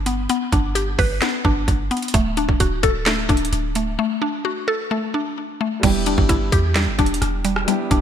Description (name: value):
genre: hip hop, trap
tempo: 130 BPM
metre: 4/4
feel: half-time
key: E minor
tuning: A4 = 440 Hz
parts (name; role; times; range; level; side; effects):
- mallet-like synth pluck; arpeggios; 0.0-8.0 s; G3 to B4; -21 LUFS; left 2 dB; chorus, ping-pong delay
- clean 808-style bass; bass; 0.0-8.0 s; D1 to E2; -23 LUFS; right 1 dB; none
- trap drum kit; drums; 0.1-8.0 s; crash cymbal, handclaps, hi-hat, kick drum, rim click, snare drum; -20 LUFS; right 1 dB; none
- dark concert grand piano; accompaniment; 5.8-8.0 s; G3 to G4; -27 LUFS; right 3 dB; none
room: light reverb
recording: bright 1980s-style digital production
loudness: -18 LUFS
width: side -9 dB against mid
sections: 0.0-5.8 A section; 5.8-8.0 B section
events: break 4.0-5.8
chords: 0.0 G; 2.1 D; 5.8 Em7